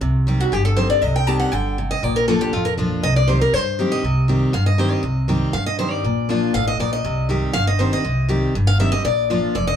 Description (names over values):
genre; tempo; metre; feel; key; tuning
bluegrass; 239 BPM; 4/4; straight; C dorian; A4 = 440 Hz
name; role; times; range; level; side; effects
picked steel-string acoustic guitar; accompaniment; 0.0-9.8 s; F2 to G4; -20 LUFS; left 1 dB; none
upright bass; bass; 0.0-9.8 s; F1 to G2; -22 LUFS; equal; none
picked acoustic archtop guitar; melody; 0.4-9.8 s; F4 to A5; -21 LUFS; left 1 dB; none
room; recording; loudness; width
wet small room reverb, RT60 0.5 s; band playing live in one room; -17 LUFS; side -9 dB against mid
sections
0.0-9.8 A section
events
steel-string acoustic guitar solo 0.0-9.8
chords
0.0 Cm; 2.0 Bb; 3.0 Cm; 6.0 Bb; 7.0 Cm; 9.1 Bb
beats
| 0.02 0.27 0.52 0.77 | 1.02 1.27 1.53 1.78 | 2.03 2.28 2.53 2.78 | 3.03 3.28 3.53 3.78 | 4.03 4.29 4.54 4.79 | 5.04 5.29 5.54 5.79 | 6.04 6.29 6.54 6.79 | 7.04 7.29 7.55 7.80 | 8.05 8.30 8.55 8.80 | 9.05 9.30 9.55